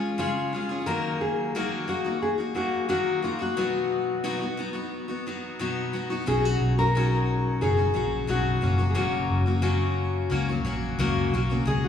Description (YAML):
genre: acoustic pop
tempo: 89 BPM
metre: 4/4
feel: straight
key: unclear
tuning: A4 = 440 Hz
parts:
  - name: nylon-string guitar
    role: melody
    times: 0.0-11.9 s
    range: E#4 to A#4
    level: -28 LUFS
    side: left 2 dB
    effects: none
  - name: picked steel-string acoustic guitar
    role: accompaniment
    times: 0.0-11.9 s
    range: F#2 to D#5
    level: -27 LUFS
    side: left 3 dB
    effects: none
  - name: vintage muted fingered electric bass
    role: bass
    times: 6.3-11.9 s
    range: F#1 to C#2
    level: -25 LUFS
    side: equal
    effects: none
room: wet church reverb, RT60 3.5 s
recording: recorded in a church or concert hall, studio reverb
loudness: -24 LUFS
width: side -8 dB against mid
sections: 0.0-6.3 A section; 6.3-11.9 B section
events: none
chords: 0.0 C#; 0.9 D#m; 3.6 B; 6.3 Badd9; 8.6 F#